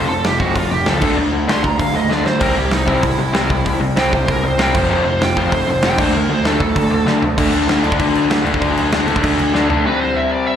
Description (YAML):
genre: punk rock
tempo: 194 BPM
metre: 4/4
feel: straight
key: unclear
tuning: A4 = 441 Hz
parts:
  - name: smooth overdriven lead guitar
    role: melody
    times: 0.0-7.1, 9.9-10.6 s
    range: Eb4 to C6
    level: -20 LUFS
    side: right 2 dB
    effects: slapback echo
  - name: raw garage guitar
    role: riff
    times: 0.0-10.6 s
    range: F2 to D4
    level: -18 LUFS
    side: left 6 dB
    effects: overdrive, slapback echo
  - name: raw garage guitar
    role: riff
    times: 0.0-9.9 s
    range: F2 to D4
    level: -22 LUFS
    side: right 12 dB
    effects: overdrive, slapback echo
  - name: overdriven picked electric bass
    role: bass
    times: 0.0-9.8 s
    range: F1 to D2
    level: -22 LUFS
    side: equal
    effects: none
  - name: big rock drum kit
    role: drums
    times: 0.2-9.8 s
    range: crash cymbal, hi-hat, kick drum, snare drum, toms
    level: -20 LUFS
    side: equal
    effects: none
room: little or no reverb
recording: live gig heard through the venue's PA, recital hall reverb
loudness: -14 LUFS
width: side -9 dB against mid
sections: 0.0-7.4 A section; 7.4-9.9 B section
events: lead electric guitar solo 0.0-7.4; drum fill 2.1-2.4, 7.1-7.4, 9.5-9.9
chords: 0.0 F5; 1.0 D5; 2.4 C; 4.7 F5; 6.0 D5; 9.9 C5